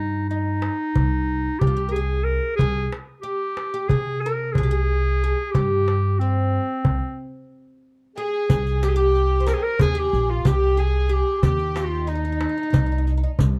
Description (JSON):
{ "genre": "Turkish makam ensemble", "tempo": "183 BPM (eighths)", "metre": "9/8", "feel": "straight", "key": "C minor", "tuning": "A4 = 440 Hz", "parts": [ { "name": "clear clarinet", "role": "melody", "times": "0.0-13.4 s", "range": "C4 to Bb4", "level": "-28 LUFS", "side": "equal", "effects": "plate reverb" }, { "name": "oud", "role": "second line", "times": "0.0-13.3 s", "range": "C4 to C5", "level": "-31 LUFS", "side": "equal", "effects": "none" }, { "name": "upright bass", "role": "bass", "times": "0.0-13.6 s", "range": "Bb1 to C3", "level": "-25 LUFS", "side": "equal", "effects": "none" }, { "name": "darbuka", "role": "percussion", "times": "0.3-13.5 s", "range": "none", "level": "-25 LUFS", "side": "equal", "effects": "none" }, { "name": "warm studio violin section", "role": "second line", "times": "8.2-13.4 s", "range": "Eb4 to Bb4", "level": "-36 LUFS", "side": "equal", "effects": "none" }, { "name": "riq", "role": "percussion", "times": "8.5-13.6 s", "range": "none", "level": "-36 LUFS", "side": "equal", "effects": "none" } ], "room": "light reverb", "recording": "dark, warm production", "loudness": "-22 LUFS", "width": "mono", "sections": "0.0-8.5 A section; 8.5-13.6 B section", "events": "break 7.0-8.5", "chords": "none", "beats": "0.30 0.63 0.95 1.28 1.61 1.94 2.27 | 2.59 2.92 3.25 3.58 3.90 4.23 4.56 4.89 5.22 | 5.54 5.87 6.20 6.53 6.85 7.18 7.51 7.84 8.16 | 8.49 8.82 9.14 9.47 9.80 10.13 10.45 10.78 11.11 | 11.43 11.76 12.09 12.41 12.74 13.07 13.39" }